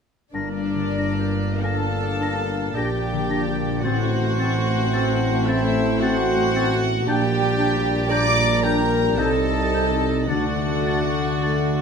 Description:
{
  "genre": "classical, slow romantic movement for symphony orchestra",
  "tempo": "44-58 BPM",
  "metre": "3/4",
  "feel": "rubato",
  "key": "G minor",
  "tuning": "A4 = 440 Hz",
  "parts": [
    { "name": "rich studio violin section", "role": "melody", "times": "0.3-11.8 s", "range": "D5 to D6", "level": "-29 LUFS", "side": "right 2 dB", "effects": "none" },
    { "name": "clear clarinet", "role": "second line", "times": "0.3-11.6 s", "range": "C4 to Eb4", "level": "-32 LUFS", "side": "left 1 dB", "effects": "none" },
    { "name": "clear oboe", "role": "second line", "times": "0.3-11.8 s", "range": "Bb4 to Bb5", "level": "-30 LUFS", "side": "equal", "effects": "none" },
    { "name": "dark studio violin section", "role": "second line", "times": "0.3-11.8 s", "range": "D4 to D5", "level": "-30 LUFS", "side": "equal", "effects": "none" },
    { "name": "hollow concert flute", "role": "second line", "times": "0.3-11.6 s", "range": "G6 to Bb6", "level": "-34 LUFS", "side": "left 3 dB", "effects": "none" },
    { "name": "rich studio viola section", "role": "accompaniment", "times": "0.3-11.8 s", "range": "D4 to D5", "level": "-27 LUFS", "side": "right 1 dB", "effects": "none" },
    { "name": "warm French horn section", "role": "sustained chords", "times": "0.3-11.8 s", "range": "G3 to Eb4", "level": "-28 LUFS", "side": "left 4 dB", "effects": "none" },
    { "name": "concert harp", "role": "arpeggios", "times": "0.3-11.8 s", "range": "G2 to D5", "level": "-29 LUFS", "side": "left 10 dB", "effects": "none" },
    { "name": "mellow tuba", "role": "bass", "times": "0.3-11.8 s", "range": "G1 to D2", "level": "-29 LUFS", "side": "right 4 dB", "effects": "none" },
    { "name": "warm studio cello section", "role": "bass", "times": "0.3-11.8 s", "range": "G2 to D3", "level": "-28 LUFS", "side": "right 1 dB", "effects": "none" },
    { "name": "warm studio double bass section", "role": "bass", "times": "0.3-11.8 s", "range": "G1 to D2", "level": "-28 LUFS", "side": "right 4 dB", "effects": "none" }
  ],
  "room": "moderate scoring stage reverb, RT60 1.7 s",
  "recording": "close, detailed microphones",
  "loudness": "-19 LUFS",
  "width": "side -6 dB against mid",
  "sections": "0.3-11.8 A section",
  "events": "none",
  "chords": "0.3 Gm; 3.8 F#dim/A; 7.1 Gm/Bb; 9.2 Am7b5/C; 10.3 D"
}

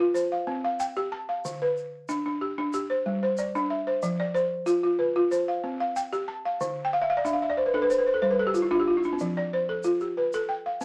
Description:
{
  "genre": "west african traditional, West African string and xylophone music",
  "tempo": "93 BPM",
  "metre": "4/4",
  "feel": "straight",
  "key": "F lydian",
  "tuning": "A4 = 440 Hz",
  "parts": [
    { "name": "balafon", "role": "arpeggios", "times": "0.0-10.8 s", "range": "D3 to A5", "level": "-27 LUFS", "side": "equal", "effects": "none" },
    { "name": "egg shaker", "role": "percussion", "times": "0.2-10.8 s", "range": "none", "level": "-48 LUFS", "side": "equal", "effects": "none" }
  ],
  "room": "moderate studio reverb, RT60 0.9 s",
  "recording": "none",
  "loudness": "-27 LUFS",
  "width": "mono",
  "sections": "0.0-9.2 A section; 9.2-10.8 B section",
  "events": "balafon fill 6.8-9.2",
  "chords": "0.1 C5; 1.4 Dm; 2.7 G5; 4.0 F5; 5.3 C5; 6.6 Dm; 7.9 G5; 9.2 F"
}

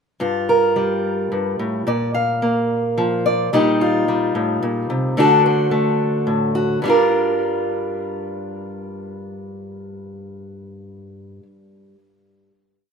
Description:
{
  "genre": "folk",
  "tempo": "73 BPM (dotted quarters)",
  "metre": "6/8",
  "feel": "straight",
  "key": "G minor",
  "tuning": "A4 = 440 Hz",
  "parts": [
    { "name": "fingerpicked acoustic archtop guitar", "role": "solo", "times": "0.2-11.5 s", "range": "G2 to F5", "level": "-18 LUFS", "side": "equal", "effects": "none" }
  ],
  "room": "light reverb",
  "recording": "rough home demo mix",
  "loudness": "-16 LUFS",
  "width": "side -6 dB against mid",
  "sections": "0.2-6.8 verse; 6.8-10.1 final chord",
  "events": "none",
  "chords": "0.2 Gm7; 1.9 Bb; 3.5 Eb/Bb; 5.2 D; 6.8 Gm7"
}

